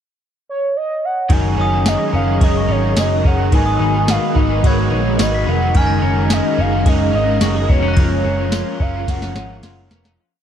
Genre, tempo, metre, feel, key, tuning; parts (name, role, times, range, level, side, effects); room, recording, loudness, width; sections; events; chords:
dream pop; 108 BPM; 4/4; straight; F# major; A4 = 439 Hz
warbly nostalgic lead; melody; 0.5-9.9 s; C#5 to G#5; -21 LUFS; right 2 dB; chorus, ping-pong delay
overdriven electric guitar; accompaniment; 1.3-10.2 s; G#2 to B4; -25 LUFS; right 4 dB; harmonic tremolo, analog chorus
ensemble organ-string; sustained chords; 1.3-10.2 s; E#3 to B4; -22 LUFS; equal; ensemble chorus
semi-hollow electric guitar; arpeggios; 1.3-10.4 s; D#3 to G#4; -24 LUFS; left 6 dB; lush chorus, ping-pong delay
vintage muted picked electric bass; bass; 1.3-10.2 s; E#1 to A#1; -19 LUFS; equal
soft vintage rhythm box; drums; 1.3-10.2 s; kick drum, ride cymbal, snare drum, tambourine; -17 LUFS; equal
glockenspiel with soft plastic mallets; texture; 1.6-8.3 s; C#6 to B6; -30 LUFS; left 2 dB; ping-pong delay
light reverb; dark, warm production; -14 LUFS; side -9 dB against mid
0.0-1.3 pickup bar; 1.3-10.2 climax
fade-out 8.0-10.2; drum fill 9.1-10.2
0.0 N.C.; 1.3 F#69; 8.0 F#maj7